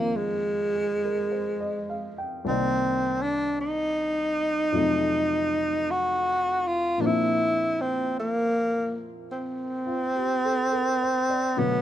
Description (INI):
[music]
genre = jazz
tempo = 52 BPM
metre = 4/4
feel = swing 67% on 8ths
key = unclear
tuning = A4 = 435 Hz
[part]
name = breathy tenor saxophone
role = melody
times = 0.0-11.8 s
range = Ab3 to Gb4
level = -24 LUFS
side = equal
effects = none
[part]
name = warm baby grand piano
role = accompaniment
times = 0.0-11.8 s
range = C2 to G5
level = -30 LUFS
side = left 2 dB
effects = none
[sound]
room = light reverb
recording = none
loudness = -23 LUFS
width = side -11 dB against mid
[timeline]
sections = 0.0-11.8 A section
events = none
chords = 0.0 Fm9; 2.4 Cm7; 4.7 F7b9; 7.0 Bbadd9